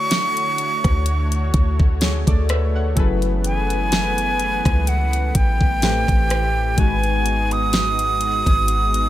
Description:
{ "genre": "contemporary R&B", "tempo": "63 BPM", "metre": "4/4", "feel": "swing 54% on 16ths", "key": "unclear", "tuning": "A4 = 445 Hz", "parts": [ { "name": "breathy concert flute", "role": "melody", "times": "0.0-9.1 s", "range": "F#5 to D#6", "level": "-22 LUFS", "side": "right 1 dB", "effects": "tape echo" }, { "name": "warm analog keys", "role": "accompaniment", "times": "0.0-9.1 s", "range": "G#2 to F#5", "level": "-27 LUFS", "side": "left 4 dB", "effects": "chorus" }, { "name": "warm analog pad", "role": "sustained chords", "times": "0.0-9.1 s", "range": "D3 to C#5", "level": "-29 LUFS", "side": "right 2 dB", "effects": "chorus" }, { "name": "smooth R&B drum kit", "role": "drums", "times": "0.1-9.1 s", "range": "hi-hat, kick drum, rim click, snare drum", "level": "-19 LUFS", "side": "equal", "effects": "none" }, { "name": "warm 808-style bass", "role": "bass", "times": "0.8-9.1 s", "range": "F#1 to D2", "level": "-21 LUFS", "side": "equal", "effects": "none" } ], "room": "digital ambience", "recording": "none", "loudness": "-16 LUFS", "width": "side -14 dB against mid", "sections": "0.0-9.1 A section", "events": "none", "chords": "0.0 Dmaj7; 3.0 F#m11; 5.8 Am7; 6.8 G#m7" }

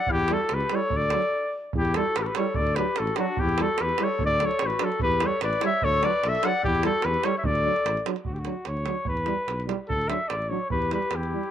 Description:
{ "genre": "balkan folk, Balkan brass band", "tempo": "147 BPM", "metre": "2/4", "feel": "swing 55% on 16ths", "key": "D major", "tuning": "A4 = 440 Hz", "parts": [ { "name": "warm flugelhorn", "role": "melody", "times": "0.0-11.5 s", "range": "F#4 to F#5", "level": "-26 LUFS", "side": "equal", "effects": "none" }, { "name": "warm clarinet", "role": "second line", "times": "0.0-8.1, 10.7-11.5 s", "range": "D4 to D5", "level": "-31 LUFS", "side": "left 11 dB", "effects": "none" }, { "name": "dark tuba", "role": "bass", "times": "0.1-11.3 s", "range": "A1 to E2", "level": "-30 LUFS", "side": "equal", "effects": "none" }, { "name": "davul", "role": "percussion", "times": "0.1-11.5 s", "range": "none", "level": "-32 LUFS", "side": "right 4 dB", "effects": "none" }, { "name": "warm euphonium", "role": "accompaniment", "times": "0.3-11.4 s", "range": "D4 to E4", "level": "-37 LUFS", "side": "left 12 dB", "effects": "none" }, { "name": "warm trombone", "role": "accompaniment", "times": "0.3-11.4 s", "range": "F#3 to G3", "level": "-32 LUFS", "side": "right 11 dB", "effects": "none" } ], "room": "wet spring reverb, RT60 1.4 s, small room ambience", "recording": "1960s-style stereo with parts hard left and right", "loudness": "-23 LUFS", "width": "side -10 dB against mid", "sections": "0.0-1.7 A section; 1.7-8.3 A section; 8.3-11.5 B section", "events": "stop 1.3-1.7", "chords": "0.1 Em; 0.9 D5; 1.7 Em; 2.6 D; 3.4 Em; 4.2 D; 5.0 Em; 5.8 D; 6.6 Em; 7.5 D; 9.1 Em; 9.9 D; 10.7 Em" }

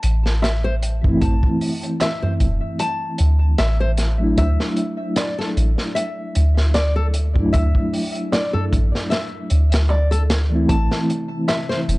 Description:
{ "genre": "trip hop", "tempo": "76 BPM", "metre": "4/4", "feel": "swing 55% on 16ths", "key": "A dorian", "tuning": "A4 = 440 Hz", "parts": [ { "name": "nylon-string guitar", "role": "arpeggios", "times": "0.0-11.8 s", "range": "A4 to A5", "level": "-26 LUFS", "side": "left 1 dB", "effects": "tape echo" }, { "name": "soft 808-style bass", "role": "bass", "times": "0.0-12.0 s", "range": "E1 to D2", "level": "-17 LUFS", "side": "equal", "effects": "none" }, { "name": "crunchy breakbeat drum kit", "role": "drums", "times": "0.0-12.0 s", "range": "hi-hat, kick drum, snare drum", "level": "-23 LUFS", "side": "equal", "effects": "vintage 12-bit sampler grit" }, { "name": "darbuka", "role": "percussion", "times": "0.4-11.7 s", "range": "none", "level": "-27 LUFS", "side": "right 1 dB", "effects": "none" }, { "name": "reed electric piano", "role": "accompaniment", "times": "1.0-12.0 s", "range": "E3 to E4", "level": "-24 LUFS", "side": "equal", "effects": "fast tremolo, vintage 12-bit sampler grit, tape echo" }, { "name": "deep dark ambient pad", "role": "sustained chords", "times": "11.2-12.0 s", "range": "C4 to C5", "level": "-37 LUFS", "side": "equal", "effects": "none" } ], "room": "small room ambience", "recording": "dark, warm production, nothing above 10.5 kHz", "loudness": "-17 LUFS", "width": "side -21 dB against mid", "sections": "0.0-12.0 A section", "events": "none", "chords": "0.0 Am; 4.4 Dadd9; 10.7 Am" }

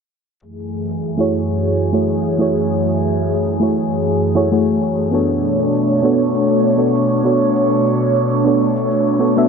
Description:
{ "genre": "sunset chillout", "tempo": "99 BPM", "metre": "4/4", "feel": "swing 55% on 16ths", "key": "F# minor", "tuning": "A4 = 439 Hz", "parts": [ { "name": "airy breathy pad", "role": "sustained chords", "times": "0.4-9.5 s", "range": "F#2 to C#5", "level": "-17 LUFS", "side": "equal", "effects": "chorus, phaser" }, { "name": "shaker", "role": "drums", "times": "0.4-9.5 s", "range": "none", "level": "-57 LUFS", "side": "left 3 dB", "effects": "none" }, { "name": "mellow FM electric piano", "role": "accompaniment", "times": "1.2-9.5 s", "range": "A3 to E5", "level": "-17 LUFS", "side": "equal", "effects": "chorus, auto-pan, analog delay" } ], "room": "moderate echo chamber reverb, RT60 1.6 s", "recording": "echo-heavy mix, low-pass filter", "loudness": "-14 LUFS", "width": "side -6 dB against mid", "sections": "0.4-9.5 A section", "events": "filter sweep 0.4-9.5", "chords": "0.4 F#m9; 5.3 Bm9" }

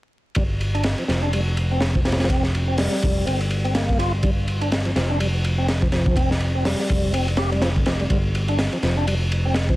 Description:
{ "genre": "breakbeat, breaks", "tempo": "124 BPM", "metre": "4/4", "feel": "swing 58% on 16ths", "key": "unclear", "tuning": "A4 = 440 Hz", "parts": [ { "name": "crunchy breakbeat drum kit", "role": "drums", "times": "0.3-9.8 s", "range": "hi-hat, kick drum, ride cymbal, snare drum", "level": "-23 LUFS", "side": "equal", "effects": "none" }, { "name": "tonewheel organ", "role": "riff", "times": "0.4-9.8 s", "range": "F3 to G4", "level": "-26 LUFS", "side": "equal", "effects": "overdrive, fast rotary speaker, vintage 12-bit sampler grit, low-pass filter, digital delay" }, { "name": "modern bright picked electric bass", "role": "bass", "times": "0.4-9.8 s", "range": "F1 to G1", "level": "-22 LUFS", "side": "equal", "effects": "none" } ], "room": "small room ambience", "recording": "vinyl crackle", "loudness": "-19 LUFS", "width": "side -17 dB against mid", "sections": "0.4-9.8 A section", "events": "none", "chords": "0.4 G7(no3)" }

